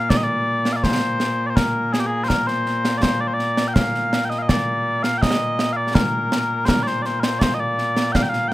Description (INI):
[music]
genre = scottish traditional, Scottish pipe music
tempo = 82 BPM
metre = 3/4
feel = straight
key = Bb major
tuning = A4 = 440 Hz
[part]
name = mellow small bagpipes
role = melody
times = 0.0-8.5 s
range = Bb2 to G5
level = -20 LUFS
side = left 1 dB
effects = none
[part]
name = concert snare drum and concert bass drum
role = drums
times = 0.1-8.4 s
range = none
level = -21 LUFS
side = right 1 dB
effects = none
[sound]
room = moderate small room reverb, RT60 0.5 s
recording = rough home demo mix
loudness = -18 LUFS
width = side -16 dB against mid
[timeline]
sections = 0.0-8.5 A section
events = none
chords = none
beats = | 0.11 0.84 1.57 | 2.30 3.03 3.77 | 4.50 5.23 5.96 | 6.69 7.42 8.16